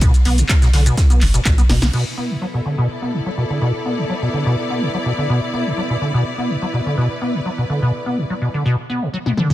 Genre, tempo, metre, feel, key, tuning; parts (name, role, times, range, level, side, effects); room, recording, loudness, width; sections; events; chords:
acid house; 125 BPM; 4/4; straight; B minor; A4 = 440 Hz
acid bass, square; riff; 0.0-9.5 s; A2 to B3; -19 LUFS; equal; lush chorus, sidechain pumping, digital delay
warm sub bass; bass; 0.0-1.9 s; F#1 to B1; -16 LUFS; equal; sidechain pumping
electronic kick drum; drums; 0.0-1.6 s; -14 LUFS; equal
loose indie drum kit; drums; 0.0-1.9 s; hi-hat, ride cymbal, snare drum; -32 LUFS; left 1 dB; sidechain pumping on cymbals, high-pass filter on cymbals, sidechain pumping on hats, high-pass filter on hats, high-pass filter on snare, high-pass filter on room
punchy analog drum machine; drums; 0.0-2.0, 9.3-9.5 s; crash cymbal, handclaps, hi-hat, shaker, snare drum, toms; -22 LUFS; left 1 dB
clear symphonic string section; texture; 1.9-8.7 s; B3 to D5; -24 LUFS; left 1 dB; sidechain pumping
light reverb, small room reverb; -16 LUFS; side -14 dB against mid
0.0-1.9 A section; 1.9-9.5 B section
drum fill 1.7, 9.3
0.0 B5; 1.9 Bm